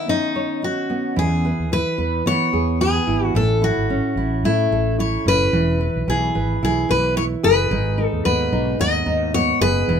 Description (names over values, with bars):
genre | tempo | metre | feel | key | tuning
acoustic pop | 110 BPM | 4/4 | swing 55% on 16ths | E major | A4 = 440 Hz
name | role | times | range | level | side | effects
picked steel-string acoustic guitar | melody | 0.0-10.0 s | D#4 to D#5 | -20 LUFS | left 3 dB | none
nylon-string guitar | accompaniment | 0.0-10.0 s | G#2 to C#5 | -22 LUFS | right 2 dB | none
fretless electric bass | bass | 1.2-10.0 s | E1 to E3 | -23 LUFS | equal | none
room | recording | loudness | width
moderate studio reverb, RT60 0.5 s | minimal, uncompressed stereo recording | -17 LUFS | side -7 dB against mid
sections
0.0-5.5 A section; 5.5-10.0 B section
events
none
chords
0.0 Badd9/D#; 1.2 E6; 3.4 A; 5.5 E; 7.7 G#m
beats
0.09 0.63 | 1.18 1.72 2.27 2.81 | 3.36 3.90 4.44 4.99 | 5.53 6.08 6.62 7.17 | 7.71 8.25 8.80 9.34 | 9.88